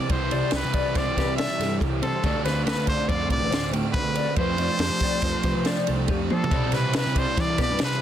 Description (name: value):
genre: math rock and midwest emo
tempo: 140 BPM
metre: 5/4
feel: straight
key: C major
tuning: A4 = 440 Hz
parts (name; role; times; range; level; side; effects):
- brilliant trumpet; melody; 0.0-8.0 s; A4 to E5; -28 LUFS; equal; none
- twelve-string electric guitar; accompaniment; 0.0-6.5 s; A2 to C5; -32 LUFS; right 7 dB; none
- mellow electric guitar; arpeggios; 0.0-8.0 s; G4 to G5; -31 LUFS; left 7 dB; analog chorus, tape echo
- raw garage guitar; riff; 0.0-8.0 s; C3 to F4; -30 LUFS; right 1 dB; overdrive
- fuzz picked electric bass; bass; 0.1-8.0 s; A1 to F3; -28 LUFS; equal; overdrive
- compact cocktail drum kit; drums; 0.1-7.9 s; kick drum, ride cymbal, snare drum, toms; -27 LUFS; equal; none
room: light reverb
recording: dense, heavily limited modern master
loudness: -21 LUFS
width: side -10 dB against mid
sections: 0.0-6.5 A section; 6.5-8.0 B section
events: drum fill 6.3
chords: 0.0 Cmaj9; 2.2 Dm7; 4.4 F69; 6.5 Cmaj9